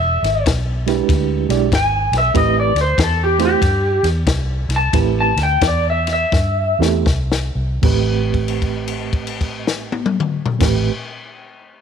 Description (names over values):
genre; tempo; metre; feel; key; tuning
electric blues shuffle; 76-96 BPM; 4/4; swing 64% on 8ths; A minor; A4 = 437 Hz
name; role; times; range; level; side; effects
electric guitar through a small old amp; melody; 0.0-6.8 s; G4 to A5; -18 LUFS; left 1 dB; wide subtle chorus, slapback echo
vintage muted fingered electric bass; bass; 0.0-10.9 s; E1 to G2; -20 LUFS; equal; none
compact cocktail drum kit; drums; 0.2-10.8 s; crash cymbal, kick drum, ride cymbal, snare drum, toms; -20 LUFS; left 2 dB; none
overdriven reed electric piano; accompaniment; 0.9-10.9 s; A2 to D5; -21 LUFS; right 14 dB; fast tremolo
room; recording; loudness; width
studio reverb; 1960s-style stereo; -15 LUFS; side -7 dB against mid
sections
0.0-7.8 A section; 7.8-11.0 B section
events
clean electric guitar solo 0.0-7.8; slowing down 2.3-7.8; drum fill 6.3-7.8; held note 7.8-10.5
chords
0.0 E7#9; 2.3 Am7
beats
0.46 1.09 1.72 | 2.35 2.98 3.62 4.27 | 4.93 5.62 6.33 7.07 | 7.83 8.62 9.41 10.20